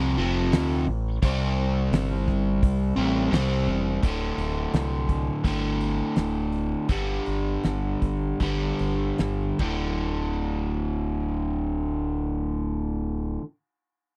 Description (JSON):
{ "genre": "classic rock", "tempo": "73-86 BPM", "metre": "4/4", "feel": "straight", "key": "unclear", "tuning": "A4 = 444 Hz", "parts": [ { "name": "biting overdriven guitar", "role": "riff", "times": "0.0-13.4 s", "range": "D2 to C4", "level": "-29 LUFS", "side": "equal", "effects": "none" }, { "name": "growling fingered electric bass", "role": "bass", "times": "0.0-13.4 s", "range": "D1 to D2", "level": "-30 LUFS", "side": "equal", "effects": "overdrive" }, { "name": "damped 70s drum kit", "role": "drums", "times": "0.5-9.8 s", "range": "hi-hat, kick drum, ride cymbal, snare drum", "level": "-26 LUFS", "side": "equal", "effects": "none" } ], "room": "little or no reverb", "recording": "dry, close 1970s-style studio recording", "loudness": "-26 LUFS", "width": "mono", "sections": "0.0-4.0 A section; 4.0-10.0 B section; 10.0-13.3 C section", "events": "slowing down 4.0-10.0", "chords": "0.0 F; 1.2 C; 4.0 D5; 6.9 G5; 9.6 D5" }